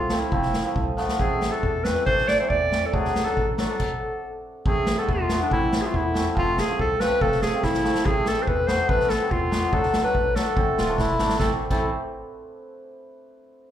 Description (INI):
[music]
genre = klezmer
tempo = 141 BPM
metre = 2/4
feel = straight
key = A harmonic minor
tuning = A4 = 440 Hz
[part]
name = clear clarinet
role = melody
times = 0.0-11.9 s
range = D4 to D5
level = -24 LUFS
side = left 1 dB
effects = plate reverb, slapback echo
[part]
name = hammered dulcimer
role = accompaniment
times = 0.0-11.9 s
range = E3 to D4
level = -27 LUFS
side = right 1 dB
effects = plate reverb, slapback echo
[part]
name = rubbery square bass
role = bass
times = 0.0-11.9 s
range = D1 to E2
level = -29 LUFS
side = equal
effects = none
[part]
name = street-band drum kit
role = drums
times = 0.1-11.8 s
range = crash cymbal, kick drum, snare drum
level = -27 LUFS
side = equal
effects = none
[part]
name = accordion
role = second line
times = 10.8-11.9 s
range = E4 to F4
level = -27 LUFS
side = left 1 dB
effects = plate reverb, slapback echo
[sound]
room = moderate club reverb, RT60 0.8 s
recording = live gig heard through the venue's PA, club reverb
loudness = -20 LUFS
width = side -10 dB against mid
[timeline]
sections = 0.0-4.7 A section; 4.7-11.4 A section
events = speeding up 0.0-12.2; drum fill 1.0, 7.6-8.1, 11.0-11.4; stop 3.8-4.7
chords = 0.0 F; 1.2 Am; 2.9 D; 3.8 N.C.; 4.7 Am; 6.4 F; 8.1 Am; 9.7 D; 10.6 Am